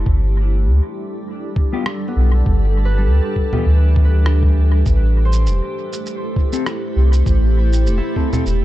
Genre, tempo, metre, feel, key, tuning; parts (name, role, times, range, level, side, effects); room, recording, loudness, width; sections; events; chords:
ambient dub; 100 BPM; 4/4; swing 55% on 16ths; A4 = 440 Hz
granular cloud pad; sustained chords; 0.0-8.6 s; G3 to C5; -24 LUFS; equal; built-in reverb
Celtic harp; arpeggios; 0.0-8.6 s; E3 to C5; -30 LUFS; right 2 dB; dub echo
soft dub sub bass; bass; 0.0-8.6 s; E1 to D2; -14 LUFS; equal
electronic kick drum; drums; 0.1-8.3 s; -18 LUFS; equal
mellow electric guitar; stabs; 1.7-8.4 s; B3 to A4; -26 LUFS; left 5 dB; wide subtle chorus, dub echo
electronic rim click, congas and shaker; drums; 1.9-8.6 s; -26 LUFS; right 2 dB; dub echo
digital ambience; dark, warm production; -14 LUFS; side -15 dB against mid
0.0-8.6 A section
0.1 G; 4.9 Am7